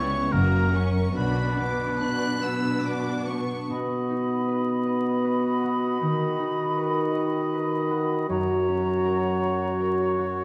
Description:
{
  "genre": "classical, slow romantic movement for symphony orchestra",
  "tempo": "70-82 BPM",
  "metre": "3/4",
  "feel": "rubato",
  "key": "B minor, B major from 3.7 s",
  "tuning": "A4 = 440 Hz",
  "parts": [
    { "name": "rich studio violin section", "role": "melody", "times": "0.0-3.7 s", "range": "A#5 to F#6", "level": "-40 LUFS", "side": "equal", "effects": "none" },
    { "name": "clear oboe", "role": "second line", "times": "0.0-10.4 s", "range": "A#4 to D#5", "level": "-33 LUFS", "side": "equal", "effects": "none" },
    { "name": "warm studio violin section", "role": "second line", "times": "0.0-3.7 s", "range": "D4 to A#4", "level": "-38 LUFS", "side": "equal", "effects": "none" },
    { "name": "rich studio viola section", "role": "accompaniment", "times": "0.0-3.7 s", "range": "A#3 to D4", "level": "-36 LUFS", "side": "equal", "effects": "none" },
    { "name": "concert harp", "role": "arpeggios", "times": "0.0-10.4 s", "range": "F#2 to D#5", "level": "-35 LUFS", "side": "equal", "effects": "none" },
    { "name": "rich chamber cello section", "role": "bass", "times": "0.0-3.4 s", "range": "C#2 to B2", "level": "-30 LUFS", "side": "equal", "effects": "none" },
    { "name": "clear chamber double bass section", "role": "bass", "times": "0.3-2.0 s", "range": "F#1 to B1", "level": "-31 LUFS", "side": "equal", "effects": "none" },
    { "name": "silver concert flute", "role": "second line", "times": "3.7-10.2 s", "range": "A#5 to B5", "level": "-35 LUFS", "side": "equal", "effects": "none" },
    { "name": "warm clarinet", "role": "second line", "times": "3.7-10.4 s", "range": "F#4", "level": "-32 LUFS", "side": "equal", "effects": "none" },
    { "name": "mellow French horn section", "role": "sustained chords", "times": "3.7-10.4 s", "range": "D#3 to B3", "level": "-28 LUFS", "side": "equal", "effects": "none" }
  ],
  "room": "moderate scoring stage reverb, RT60 2.0 s",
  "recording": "vinyl crackle",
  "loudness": "-25 LUFS",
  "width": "mono",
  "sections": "0.0-3.7 A section; 3.7-10.4 B section",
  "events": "none",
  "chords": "0.3 F#; 1.2 Bm; 3.7 B; 6.0 B/D#; 8.3 F#",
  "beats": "0.34 | 1.17 2.02 2.86 | 3.70 4.49 5.25 | 6.01 6.78 7.54 | 8.30 9.06 9.81"
}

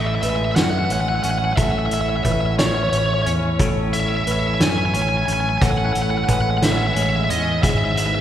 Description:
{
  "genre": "post-rock",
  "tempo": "59 BPM (dotted quarters)",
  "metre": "6/8",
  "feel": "straight",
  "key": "A major",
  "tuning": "A4 = 440 Hz",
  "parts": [
    { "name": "biting lead guitar", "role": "melody", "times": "0.0-8.2 s", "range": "C#5 to G#5", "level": "-22 LUFS", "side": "equal", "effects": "overdrive" },
    { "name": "warm studio string section", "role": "sustained chords", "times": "0.0-8.2 s", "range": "G#3 to G#5", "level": "-33 LUFS", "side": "equal", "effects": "none" },
    { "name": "felt-muted upright piano", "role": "arpeggios", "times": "0.0-8.2 s", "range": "G#4 to C#5", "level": "-30 LUFS", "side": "right 1 dB", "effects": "none" },
    { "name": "twangy electric guitar", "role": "arpeggios", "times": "0.0-8.2 s", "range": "G#2 to C#4", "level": "-29 LUFS", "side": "equal", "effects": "tremolo" },
    { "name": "fingered electric bass", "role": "bass", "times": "0.0-8.2 s", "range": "G#1 to F#2", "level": "-22 LUFS", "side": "equal", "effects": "none" },
    { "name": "loose indie drum kit", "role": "drums", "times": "0.2-8.1 s", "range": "hi-hat, kick drum, snare drum", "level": "-23 LUFS", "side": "equal", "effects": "none" }
  ],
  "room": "wet cathedral reverb, RT60 6.3 s",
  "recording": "recorded in a church or concert hall",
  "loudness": "-17 LUFS",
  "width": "side -10 dB against mid",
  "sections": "0.0-8.2 A section",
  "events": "none",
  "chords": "0.0 Amaj7; 7.6 Eadd9/G#",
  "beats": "0.57 | 1.58 2.59 | 3.60 4.61 | 5.62 6.62 | 7.63"
}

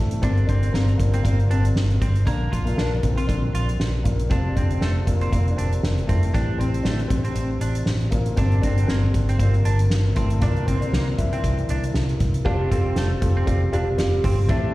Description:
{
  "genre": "piano-driven pop",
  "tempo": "118 BPM",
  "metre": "4/4",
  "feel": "swing 56% on 16ths",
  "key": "F major",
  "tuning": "A4 = 442 Hz",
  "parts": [
    { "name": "felt-muted upright piano", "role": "accompaniment", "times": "0.0-14.7 s", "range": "A2 to A4", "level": "-26 LUFS", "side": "left 2 dB", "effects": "slapback echo" },
    { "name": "vintage muted fingered electric bass", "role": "bass", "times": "0.0-14.7 s", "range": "E1 to C2", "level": "-22 LUFS", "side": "equal", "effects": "none" },
    { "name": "soft-mallet drum kit", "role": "drums", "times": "0.1-14.6 s", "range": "crash cymbal, hi-hat, kick drum, snare drum", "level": "-24 LUFS", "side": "equal", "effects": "none" },
    { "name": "twelve-string electric guitar", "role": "riff", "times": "0.2-14.7 s", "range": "A3 to F4", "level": "-32 LUFS", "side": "right 4 dB", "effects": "wide subtle chorus, slapback echo" }
  ],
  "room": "little or no reverb",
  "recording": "live gig heard through the venue's PA, recital hall reverb",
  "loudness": "-19 LUFS",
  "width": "side -18 dB against mid",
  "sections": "0.0-12.5 A section; 12.5-14.7 B section",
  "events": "felt piano solo 0.0-12.5",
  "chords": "0.2 Gm; 2.3 Bbadd9; 4.3 Fsus2; 6.3 Am7; 8.4 Gm; 10.4 C7; 12.5 Fsus2",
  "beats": "| 0.23 0.74 1.25 1.76 | 2.27 2.78 3.29 3.80 | 4.31 4.82 5.33 5.84 | 6.35 6.86 7.36 7.87 | 8.38 8.89 9.40 9.91 | 10.42 10.93 11.44 11.95 | 12.46 12.96 13.47 13.98 | 14.49"
}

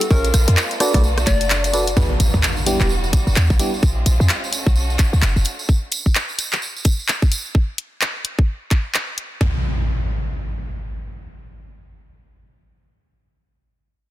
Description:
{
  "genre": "UK garage, two-step garage",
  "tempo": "129 BPM",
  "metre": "4/4",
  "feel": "swing 60% on 16ths",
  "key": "unclear",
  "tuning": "A4 = 435 Hz",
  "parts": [
    { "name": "soft struck synth lead", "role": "melody", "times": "0.0-1.7 s", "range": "A#4 to D5", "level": "-26 LUFS", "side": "left 2 dB", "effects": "chorus, dub echo" },
    { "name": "warm studio violin section", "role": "sustained chords", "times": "0.0-5.7 s", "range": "G3 to F#4", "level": "-30 LUFS", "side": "equal", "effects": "sidechain pumping" },
    { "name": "garage drum kit", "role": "drums", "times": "0.0-9.3 s", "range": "congas, handclaps, hi-hat, rim click", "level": "-22 LUFS", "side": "left 1 dB", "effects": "none" },
    { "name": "tambourine", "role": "percussion", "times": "0.0-7.5 s", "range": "none", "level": "-28 LUFS", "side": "right 4 dB", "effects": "none" },
    { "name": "FM electric piano", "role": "stabs", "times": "0.1-3.7 s", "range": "G3 to D5", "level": "-24 LUFS", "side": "right 1 dB", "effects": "chorus, vintage 12-bit sampler grit, dub echo" },
    { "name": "short 808-style bass", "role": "bass", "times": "0.1-5.4 s", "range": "E1 to E#2", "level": "-17 LUFS", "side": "equal", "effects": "tube saturation" },
    { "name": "electronic kick drum", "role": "drums", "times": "0.1-9.5 s", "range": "none", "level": "-17 LUFS", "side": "equal", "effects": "none" },
    { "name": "impact", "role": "sound effects", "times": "2.0-3.8, 9.4-12.4 s", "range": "none", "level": "-25 LUFS", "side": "equal", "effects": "none" }
  ],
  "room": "little or no reverb",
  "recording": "dense, heavily limited modern master",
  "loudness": "-16 LUFS",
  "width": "side -14 dB against mid",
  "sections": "0.0-2.0 A section; 2.0-9.4 B section; 9.4-13.1 C section",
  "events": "drop 0.0-2.0; kick drops out 1.5-2.0; impact 2.0-3.8",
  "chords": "0.1 A#m7; 0.8 Bm7; 2.0 G#m7; 2.7 Em7; 3.8 A#m7; 4.5 Bm7; 5.7 N.C.",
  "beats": "| 0.11 0.57 1.04 1.50 | 1.97 2.43 2.90 3.36 | 3.83 4.29 4.76 5.22 | 5.69 6.15 6.62 7.08 | 7.55 8.01 8.48 8.94 | 9.41 9.87 10.34 10.80 | 11.27 11.73 12.20"
}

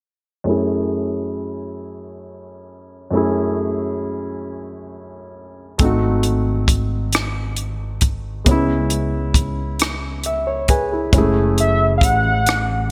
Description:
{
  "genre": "slow six-eight R&B",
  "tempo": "45 BPM (dotted quarters)",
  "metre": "6/8",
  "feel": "straight",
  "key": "F# minor",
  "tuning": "A4 = 435 Hz",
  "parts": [
    { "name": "warm concert grand piano", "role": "accompaniment", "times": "0.4-12.9 s", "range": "F#2 to G#5", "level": "-24 LUFS", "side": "equal", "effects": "low-pass filter" },
    { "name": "fretless electric bass", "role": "bass", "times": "5.8-12.9 s", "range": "F#1 to C#2", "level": "-24 LUFS", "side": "equal", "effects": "ensemble chorus" },
    { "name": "compact cocktail drum kit", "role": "drums", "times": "5.8-12.7 s", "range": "hi-hat, kick drum, rim click", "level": "-20 LUFS", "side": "equal", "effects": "gated reverb" },
    { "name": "warm velvety synth lead", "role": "melody", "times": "11.6-12.9 s", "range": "E5 to F#5", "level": "-20 LUFS", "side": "equal", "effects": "chorus" }
  ],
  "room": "moderate plate reverb, RT60 2.1 s",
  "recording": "bright 1980s-style digital production",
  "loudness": "-19 LUFS",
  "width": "mono",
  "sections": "0.5-11.1 A section; 11.1-12.9 B section",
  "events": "filter sweep on grand piano 0.5-11.1; grand piano fill 9.8-11.1",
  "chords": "0.5 F#m9; 5.8 G#7b9; 8.5 C#m7; 11.1 F#m9",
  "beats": "| 0.47 1.80 | 3.13 4.46 | 5.80 7.13 | 8.46 9.80 | 11.13 12.46"
}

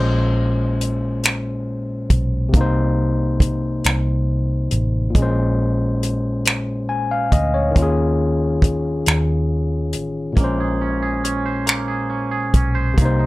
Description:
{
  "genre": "slow six-eight R&B",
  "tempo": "46 BPM (dotted quarters)",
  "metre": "6/8",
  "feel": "straight",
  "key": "Bb minor",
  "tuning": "A4 = 439 Hz",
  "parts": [
    { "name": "overdriven tine electric piano", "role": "accompaniment", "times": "0.0-13.3 s", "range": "Bb2 to Ab5", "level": "-21 LUFS", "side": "left 1 dB", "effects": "none" },
    { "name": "vintage muted fingered electric bass", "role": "bass", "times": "0.0-13.3 s", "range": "A1 to Eb2", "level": "-21 LUFS", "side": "equal", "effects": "none" },
    { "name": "warm soul drum kit", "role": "drums", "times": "0.8-13.2 s", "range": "finger snaps, hi-hat, kick drum", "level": "-17 LUFS", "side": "equal", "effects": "none" },
    { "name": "twangy electric guitar", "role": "second line", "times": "10.4-13.3 s", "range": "C3 to C5", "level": "-25 LUFS", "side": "right 5 dB", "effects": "digital delay" }
  ],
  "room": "light reverb",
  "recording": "none",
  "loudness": "-17 LUFS",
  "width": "side -19 dB against mid",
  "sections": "0.0-13.3 A section",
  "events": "none",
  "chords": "0.0 Bbm9; 2.5 Cm7; 5.2 Bbm9; 7.8 Eb9sus4; 10.4 Bbm9",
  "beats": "1.24 | 2.54 3.85 | 5.15 6.45 | 7.76 9.06 | 10.37 11.67 | 12.98"
}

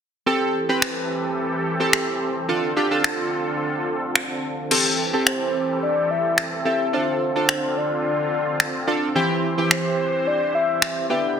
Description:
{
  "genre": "dance-pop",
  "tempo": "108 BPM",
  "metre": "4/4",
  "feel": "straight",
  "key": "A minor",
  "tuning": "A4 = 444 Hz",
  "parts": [
    { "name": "chorused retro synth keys", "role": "accompaniment", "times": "0.3-11.4 s", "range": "E3 to B4", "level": "-23 LUFS", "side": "right 1 dB", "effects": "none" },
    { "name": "filtered supersaw swell", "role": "sustained chords", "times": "0.3-11.4 s", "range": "D3 to C5", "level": "-27 LUFS", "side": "equal", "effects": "none" },
    { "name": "pop drum kit", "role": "drums", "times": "0.8-11.0 s", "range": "crash cymbal, finger snaps", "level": "-21 LUFS", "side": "left 1 dB", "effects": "overdrive, soft clipping on snare" },
    { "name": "soft octave-layered synth lead", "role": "melody", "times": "5.3-11.4 s", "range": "C5 to E5", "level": "-23 LUFS", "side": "left 2 dB", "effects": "chorus, ping-pong delay" }
  ],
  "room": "moderate echo chamber reverb, RT60 1.4 s, digital ambience",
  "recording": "dense, heavily limited modern master",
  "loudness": "-19 LUFS",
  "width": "side -8 dB against mid",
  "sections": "0.3-4.7 A section; 4.7-11.4 B section",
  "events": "none",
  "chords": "0.3 Am7; 2.5 F6; 4.7 Am7; 6.9 F6; 9.2 C/E",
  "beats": "| 0.27 0.82 1.38 1.93 | 2.49 3.04 3.60 4.16 | 4.71 5.27 5.82 6.38 | 6.93 7.49 8.04 8.60 | 9.15 9.71 10.27 10.82 | 11.38"
}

